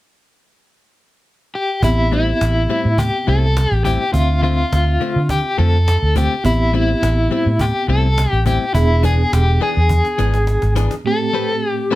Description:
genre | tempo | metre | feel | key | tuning
straight-eighth soul blues | 104 BPM | 4/4 | straight | A minor | A4 = 439 Hz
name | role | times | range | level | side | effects
overdriven electric guitar | melody | 1.6-12.0 s | E4 to A4 | -19 LUFS | left 1 dB | tremolo
reed electric piano | accompaniment | 1.8-12.0 s | A2 to E5 | -25 LUFS | right 2 dB | fast tremolo
vintage muted fingered electric bass | bass | 1.8-10.9 s | E1 to D3 | -16 LUFS | equal | none
cajon | drums | 1.8-11.0 s | none | -25 LUFS | equal | none
direct-recorded clean electric guitar | stabs | 2.1-12.0 s | A2 to B4 | -23 LUFS | left 6 dB | digital delay
room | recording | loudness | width
light reverb | none | -14 LUFS | side -16 dB against mid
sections
0.0-1.8 A section; 1.8-11.1 B section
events
drum fill 9.9-11.1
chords
0.0 N.C.; 1.8 Am7; 4.1 Dm7; 6.4 Am7; 8.7 E7; 11.1 Am9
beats
0.10 0.68 1.26 | 1.83 2.41 2.99 3.56 | 4.14 4.72 5.29 5.87 | 6.45 7.02 7.60 8.17 | 8.75 9.32 9.90 10.47 | 11.05 11.62

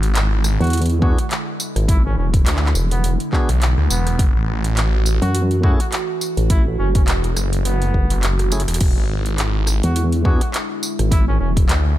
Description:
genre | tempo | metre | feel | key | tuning
glitch hop | 104 BPM | 4/4 | swing 56% on 16ths | unclear | A4 = 440 Hz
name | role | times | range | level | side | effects
warbly tape-like pad | sustained chords | 0.0-12.0 s | D3 to F#4 | -27 LUFS | right 2 dB | chorus, built-in reverb, phaser, sidechain pumping
phased detuned saw bass | bass | 0.0-12.0 s | E1 to D2 | -18 LUFS | equal | phaser
pop drum kit | drums | 0.0-11.8 s | crash cymbal, handclaps, hi-hat, rim click, tambourine | -25 LUFS | equal | none
mellow trumpet | melody | 0.6-11.5 s | B3 to F#4 | -30 LUFS | right 1 dB | vintage 12-bit sampler grit, ping-pong delay
vowel-sweep wobble bass | bass | 0.6-11.7 s | E1 to F#2 | -18 LUFS | equal | chorus
tonewheel organ | stabs | 1.0-10.4 s | A3 to G#4 | -30 LUFS | left 1 dB | overdrive, vintage 12-bit sampler grit, sidechain pumping, ping-pong delay
electronic kick drum | drums | 1.0-11.7 s | none | -17 LUFS | equal | none
room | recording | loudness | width
little or no reverb | none | -16 LUFS | side -14 dB against mid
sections
0.0-12.0 A section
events
drum fill 8.5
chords
0.0 E7; 4.2 F#m7; 8.8 E7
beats
0.15 0.73 1.31 | 1.89 2.46 3.04 3.62 | 4.19 4.77 5.35 5.92 | 6.50 7.08 7.66 8.23 | 8.81 9.39 9.96 10.54 | 11.12 11.69

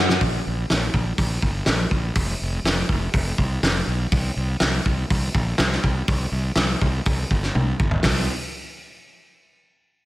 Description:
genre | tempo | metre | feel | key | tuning
quiet-loud alternative rock | 123 BPM | 4/4 | straight | unclear | A4 = 439 Hz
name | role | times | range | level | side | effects
fuzz fingered electric bass | bass | 0.0-8.3 s | F1 to F#2 | -24 LUFS | equal | overdrive
loose indie drum kit | drums | 0.1-8.2 s | hi-hat, kick drum, snare drum, toms | -22 LUFS | equal | none
room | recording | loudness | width
light reverb | none | -20 LUFS | side -17 dB against mid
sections
0.2-8.0 A section; 8.0-10.0 B section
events
drum fill 0.0, 7.5-8.0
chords
none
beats
| 0.21 0.70 1.19 1.68 | 2.16 2.65 3.14 3.63 | 4.12 4.61 5.10 5.59 | 6.08 6.57 7.06 7.55 | 8.04

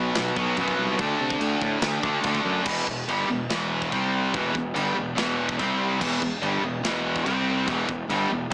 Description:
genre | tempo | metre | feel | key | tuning
heavy metal | 143 BPM | 4/4 | straight | E minor | A4 = 439 Hz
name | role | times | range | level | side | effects
sludgy distorted guitar | riff | 0.0-8.5 s | E2 to D4 | -24 LUFS | equal | overdrive
fuzz fingered electric bass | bass | 0.0-8.5 s | E1 to C3 | -29 LUFS | equal | overdrive
modern studio drum kit | drums | 0.2-8.5 s | china cymbal, crash cymbal, kick drum, snare drum | -31 LUFS | equal | none
room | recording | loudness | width
light reverb | small speaker sound | -22 LUFS | side -29 dB against mid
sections
0.0-2.7 A section; 2.7-8.5 B section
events
none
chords
0.0 B5; 1.0 D5; 2.7 Em; 3.9 C5; 4.3 Em; 5.6 C5; 6.0 Em; 7.3 C5; 7.7 Em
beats
0.15 0.57 | 0.99 1.41 1.82 2.24 | 2.66 3.08 3.50 3.92 | 4.34 4.75 5.17 5.59 | 6.01 6.43 6.84 7.26 | 7.68 8.10 8.52

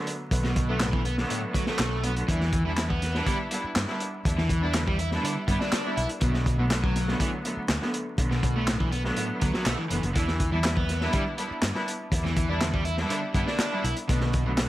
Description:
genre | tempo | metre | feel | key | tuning
breakbeat, breaks | 122 BPM | 4/4 | straight | E minor | A4 = 437 Hz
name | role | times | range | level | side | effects
clear studio string section | stabs | 0.0-14.6 s | D3 to E4 | -31 LUFS | right 1 dB | vintage 12-bit sampler grit, dub echo
crunchy breakbeat drum kit | drums | 0.1-14.7 s | hi-hat, kick drum, snare drum | -28 LUFS | equal | none
fingered electric bass | bass | 0.3-14.7 s | F#1 to G2 | -29 LUFS | equal | none
overdriven semi-hollow guitar | riff | 0.4-14.5 s | A2 to E4 | -31 LUFS | equal | vintage 12-bit sampler grit, dub echo
electronic handclaps | drums | 0.8-14.7 s | none | -34 LUFS | equal | none
room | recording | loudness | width
light reverb | vinyl crackle | -24 LUFS | side -15 dB against mid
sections
0.0-14.7 A section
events
none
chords
0.0 Bm7; 2.3 Em7; 6.2 Bm7; 10.2 Em7; 14.1 Bm7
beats
| 0.32 0.81 1.30 1.79 | 2.28 2.78 3.27 3.76 | 4.25 4.74 5.24 5.73 | 6.22 6.71 7.20 7.69 | 8.19 8.68 9.17 9.66 | 10.15 10.64 11.14 11.63 | 12.12 12.61 13.10 13.60 | 14.09 14.58

